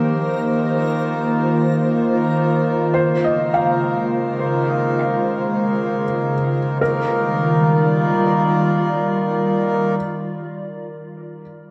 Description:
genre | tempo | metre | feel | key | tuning
ambient | free time | none | none | Eb major | A4 = 440 Hz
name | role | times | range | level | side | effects
glassy FM pad | sustained chords | 0.0-10.4 s | Db3 to D5 | -22 LUFS | equal | ensemble chorus, built-in reverb
hand-pumped harmonium | drone | 0.0-10.0 s | Eb3 to Bb3 | -25 LUFS | equal | none
backwards swelling texture | texture | 0.0-6.8 s | Bb5 | -46 LUFS | equal | none
felt-muted upright piano | arpeggios | 2.9-11.7 s | Bb4 to F5 | -26 LUFS | equal | analog delay
room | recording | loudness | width
wet plate reverb, RT60 3.0 s | dreamy mix soaked in reverb | -19 LUFS | mono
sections
0.0-6.8 A section; 6.8-10.7 B section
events
fade-out on synth texture 0.0-6.8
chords
0.0 C7sus4; 2.9 Dbmaj7; 6.8 Ebmaj9

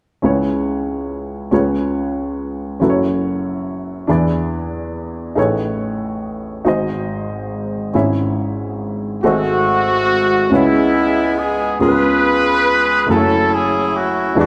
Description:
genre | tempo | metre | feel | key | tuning
gospel | 47 BPM (dotted quarters) | 6/8 | straight | C# minor | A4 = 441 Hz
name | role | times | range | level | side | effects
warm baby grand piano | accompaniment | 0.2-14.5 s | F#1 to E5 | -20 LUFS | equal | none
clear horn section | melody | 9.2-14.5 s | G#3 to B4 | -17 LUFS | equal | none
room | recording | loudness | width
wet large studio reverb, RT60 1.2 s | none | -17 LUFS | mono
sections
0.2-10.5 A section; 10.5-14.5 B section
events
none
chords
0.2 C#m7; 1.5 C#7; 2.8 F#m7; 4.1 E7; 5.4 Amaj9#11; 6.7 G#7; 7.9 C#m/G#; 9.2 G#7b9; 10.5 C#m7; 11.8 C#7; 13.1 F#m7

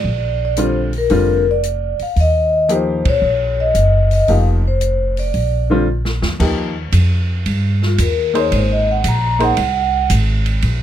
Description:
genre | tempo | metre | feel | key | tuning
jazz, small-group swing and bop | 113 BPM | 4/4 | swing 69% on 8ths | Eb major | A4 = 444 Hz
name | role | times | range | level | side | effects
vibraphone with soft mallets | melody | 0.0-10.1 s | F4 to Bb5 | -17 LUFS | left 1 dB | none
upright bass | bass | 0.0-10.8 s | F1 to Bb2 | -17 LUFS | equal | none
clear upright piano | accompaniment | 0.6-9.6 s | D3 to C5 | -18 LUFS | left 1 dB | none
open jazz drum kit | drums | 0.6-10.8 s | crash cymbal, hi-hat, kick drum, ride cymbal, snare drum | -26 LUFS | right 2 dB | none
room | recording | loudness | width
little or no reverb | close, detailed microphones | -14 LUFS | side -11 dB against mid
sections
0.0-6.4 A section; 6.4-10.8 B section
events
band accent 3.0; drum fill 5.9-6.4; vibraphone solo 6.4-10.8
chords
0.0 Bb; 2.2 Eb7; 4.3 F5; 5.3 Bb; 6.4 Eb; 8.5 Ab7

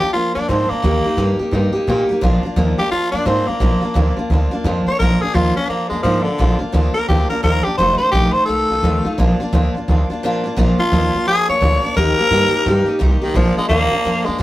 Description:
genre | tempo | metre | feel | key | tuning
rockabilly | 172 BPM | 4/4 | swing 63% on 8ths | Bb major | A4 = 440 Hz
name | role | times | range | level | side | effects
raspy tenor saxophone | melody | 0.0-14.4 s | D3 to Db5 | -17 LUFS | equal | none
picked steel-string acoustic guitar | accompaniment | 0.0-14.4 s | F2 to G4 | -20 LUFS | equal | none
upright bass | bass | 0.0-14.4 s | F1 to Bb2 | -18 LUFS | equal | none
room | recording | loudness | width
moderate small room reverb, RT60 0.5 s | rough rehearsal-room recording | -14 LUFS | side -16 dB against mid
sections
0.0-10.6 A section; 10.6-14.4 B section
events
break 10.2-10.6; tenor saxophone solo 10.6-14.4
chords
0.0 Bb; 0.8 Eb; 2.2 Bb; 7.8 F7; 9.2 Bb; 12.0 Eb; 13.4 Bb

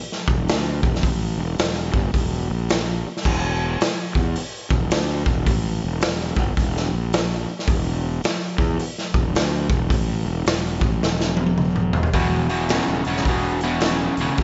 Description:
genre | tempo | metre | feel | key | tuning
blues rock power trio and southern rock | 108 BPM | 4/4 | swing 63% on 8ths | unclear | A4 = 438 Hz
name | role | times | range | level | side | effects
raw garage drum kit | drums | 0.1-14.4 s | crash cymbal, hi-hat, kick drum, snare drum, toms | -24 LUFS | equal | none
fuzz fingered electric bass | bass | 0.3-14.4 s | E1 to E2 | -26 LUFS | equal | overdrive
overdriven electric guitar | riff | 12.1-14.4 s | E2 to C#3 | -24 LUFS | equal | none
room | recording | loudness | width
light reverb, small room ambience | nothing above 7.8 kHz | -22 LUFS | mono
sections
0.0-12.1 A section; 12.1-14.4 B section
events
drum fill 11.0-12.1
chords
0.0 N.C.; 12.1 E5

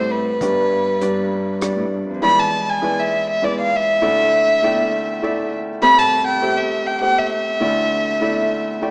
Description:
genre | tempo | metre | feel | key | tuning
acoustic folk-pop ballad | 100 BPM | 3/4 | straight | unclear | A4 = 435 Hz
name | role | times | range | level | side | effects
warm violin | melody | 0.0-8.9 s | B4 to B5 | -19 LUFS | equal | slapback echo
felt-muted upright piano | accompaniment | 0.0-8.9 s | G1 to G5 | -24 LUFS | equal | none
warm cello | bass | 0.0-2.2 s | F2 to A2 | -30 LUFS | equal | none
unplugged drum kit | drums | 0.4-1.8 s | hi-hat, kick drum, rim click | -35 LUFS | equal | none
room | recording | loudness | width
wet recital hall reverb, RT60 1.7 s | small speaker sound | -18 LUFS | mono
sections
0.0-2.2 A section; 2.2-8.9 B section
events
none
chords
0.4 G; 2.2 E7; 4.0 Dsus2; 5.8 Am7/C; 7.6 Dsus2

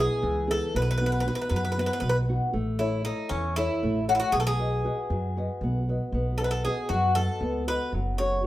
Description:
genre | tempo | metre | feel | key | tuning
greek folk, Greek bouzouki band | 234 BPM (eighths) | 7/8 | straight | unclear | A4 = 440 Hz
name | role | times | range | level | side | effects
Greek bouzouki | melody | 0.0-8.4 s | C#4 to C#5 | -28 LUFS | left 1 dB | plate reverb
nylon-string guitar | accompaniment | 0.0-8.5 s | B2 to D#5 | -30 LUFS | equal | none
upright bass | bass | 0.0-8.5 s | F#1 to F#2 | -28 LUFS | equal | none
room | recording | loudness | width
wet studio reverb, RT60 0.5 s | heard from further back in the room | -24 LUFS | side -15 dB against mid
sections
0.0-8.5 A section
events
none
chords
0.0 E; 0.7 B; 2.5 A; 4.3 B; 7.9 F#m

